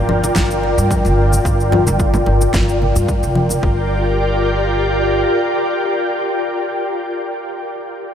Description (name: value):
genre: organic downtempo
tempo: 110 BPM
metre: 4/4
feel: swing 54% on 16ths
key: G minor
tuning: A4 = 441 Hz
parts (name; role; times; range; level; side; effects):
- ethereal airy pad; sustained chords; 0.0-7.2 s; F4 to G5; -17 LUFS; left 1 dB; ensemble chorus, built-in reverb, sidechain pumping
- upright bass; bass; 0.0-5.2 s; F1 to G2; -18 LUFS; equal; sidechain pumping
- electronic congas, shaker and snare drum; drums; 0.1-3.6 s; none; -24 LUFS; left 1 dB; overdrive
- congas; percussion; 0.1-3.6 s; none; -27 LUFS; equal; none
- electronic kick drum; drums; 0.4-3.7 s; none; -20 LUFS; equal; overdrive
room: wet huge ambient reverb, RT60 7.5 s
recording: dreamy mix soaked in reverb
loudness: -14 LUFS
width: side -9 dB against mid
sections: 0.0-3.6 A section; 3.6-8.0 B section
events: filter sweep on ambient pad 0.0-3.6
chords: 0.0 Gm7